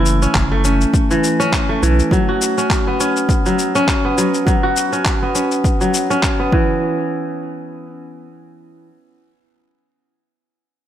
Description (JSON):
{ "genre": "organic downtempo", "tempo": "102 BPM", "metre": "4/4", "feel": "swing 55% on 16ths", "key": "unclear", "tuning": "A4 = 445 Hz", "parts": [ { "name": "kora", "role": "arpeggios", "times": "0.0-8.9 s", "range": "E3 to F#4", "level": "-17 LUFS", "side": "equal", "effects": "low-pass filter, tape echo" }, { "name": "round analog bass", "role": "bass", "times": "0.0-2.0 s", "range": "F#1 to B1", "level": "-16 LUFS", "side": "equal", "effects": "none" }, { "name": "electronic shaker and handclaps", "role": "drums", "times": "0.1-6.4 s", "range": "none", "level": "-23 LUFS", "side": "left 2 dB", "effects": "none" }, { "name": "electronic kick drum", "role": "drums", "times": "0.3-6.7 s", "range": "none", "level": "-18 LUFS", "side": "equal", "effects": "overdrive" } ], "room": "light reverb, digital ambience", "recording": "none", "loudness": "-14 LUFS", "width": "side -11 dB against mid", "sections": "0.0-6.8 A section; 6.8-9.2 B section", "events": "none", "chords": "0.0 F#m7; 2.1 C#7sus4; 6.5 N.C.", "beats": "0.35 0.94 1.52 | 2.11 2.70 3.29 3.88 | 4.46 5.05 5.64 6.23 | 6.82 7.41 7.99 8.58" }